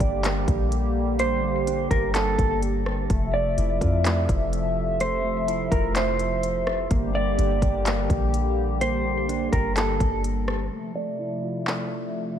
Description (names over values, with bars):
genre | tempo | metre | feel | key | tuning
hip hop, atmospheric cloud-rap | 126 BPM | 4/4 | half-time | F major | A4 = 440 Hz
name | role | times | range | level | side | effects
mellow electric guitar | melody | 0.0-12.4 s | A4 to D5 | -28 LUFS | right 2 dB | lush chorus, low-pass filter, ping-pong delay
hollow soft pad | sustained chords | 0.0-12.4 s | C3 to E5 | -28 LUFS | left 1 dB | chorus, low-pass filter
mellow electric guitar | arpeggios | 0.0-12.4 s | A3 to G4 | -33 LUFS | right 2 dB | low-pass filter, ping-pong delay
soft 808-style bass | bass | 0.0-10.7 s | F1 to F2 | -26 LUFS | equal | none
organic electronic drum kit | drums | 0.0-11.8 s | handclaps, hi-hat, kick drum, rim click | -26 LUFS | equal | overdrive
room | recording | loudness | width
light reverb | none | -22 LUFS | side -9 dB against mid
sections
0.0-10.7 A section; 10.7-12.4 B section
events
filter sweep 10.7-12.4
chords
0.0 Gm; 3.1 Fmaj7; 6.9 Gm; 10.7 Fmaj7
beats
0.24 0.72 | 1.19 1.67 2.15 2.62 | 3.10 3.58 4.05 4.53 | 5.00 5.48 5.96 6.43 | 6.91 7.38 7.86 8.34 | 8.81 9.29 9.77 10.24 | 10.72 11.19 11.67 12.15